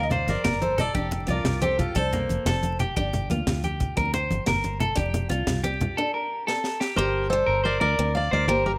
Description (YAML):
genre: highlife guitar band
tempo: 120 BPM (dotted quarters)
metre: 12/8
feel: straight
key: G minor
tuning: A4 = 440 Hz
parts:
  - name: picked steel-string acoustic guitar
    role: melody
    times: 0.0-2.8, 7.0-8.7 s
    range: F4 to F5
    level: -28 LUFS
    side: equal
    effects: none
  - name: picked acoustic archtop guitar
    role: accompaniment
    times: 0.0-8.8 s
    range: G3 to D4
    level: -36 LUFS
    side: equal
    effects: none
  - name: clean electric guitar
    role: arpeggios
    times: 0.0-8.8 s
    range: Bb3 to C5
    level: -30 LUFS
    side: equal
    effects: none
  - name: fingered electric bass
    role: bass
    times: 0.0-8.8 s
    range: F1 to D2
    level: -31 LUFS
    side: equal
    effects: none
  - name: congas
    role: percussion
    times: 0.0-5.9 s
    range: none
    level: -32 LUFS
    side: equal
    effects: none
  - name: tight funk drum kit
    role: drums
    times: 0.1-6.9 s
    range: hi-hat, kick drum, snare drum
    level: -33 LUFS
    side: equal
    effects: none
room: light reverb, small room ambience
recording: none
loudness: -25 LUFS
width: mono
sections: 0.0-7.0 A section; 7.0-8.8 B section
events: drum fill 6.5-7.0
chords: 0.0 Gm7; 1.0 F6; 3.0 Gm7; 5.0 F6; 7.0 Gm